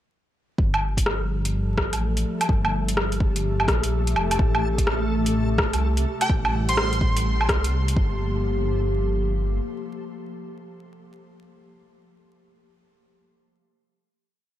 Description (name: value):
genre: future garage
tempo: 126 BPM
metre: 4/4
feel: swing 64% on 16ths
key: G minor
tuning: A4 = 441 Hz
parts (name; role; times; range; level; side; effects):
- warbly tape-like pad; sustained chords; 1.0-10.9 s; C3 to G4; -30 LUFS; left 1 dB; chorus, built-in reverb, sidechain pumping
- dark detuned saw bass; bass; 0.6-9.6 s; F1 to C2; -24 LUFS; equal; sidechain pumping
- electronic kick drum; drums; 0.6-8.1 s; none; -23 LUFS; equal; overdrive
- backwards swelling texture; texture; 1.7-8.2 s; A3 to A4; -35 LUFS; right 1 dB; built-in reverb
- deep house drum kit; drums; 0.7-8.0 s; hi-hat, rim click, woodblock; -26 LUFS; equal; overdrive
- plucky unison lead; melody; 6.2-7.2 s; G5 to C6; -30 LUFS; right 1 dB; tape echo
room: light reverb, digital ambience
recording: vinyl crackle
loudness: -20 LUFS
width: side -12 dB against mid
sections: 0.6-8.2 groove; 8.2-12.0 final hit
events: none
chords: 0.6 Gm7; 4.4 Am7; 8.0 Gm7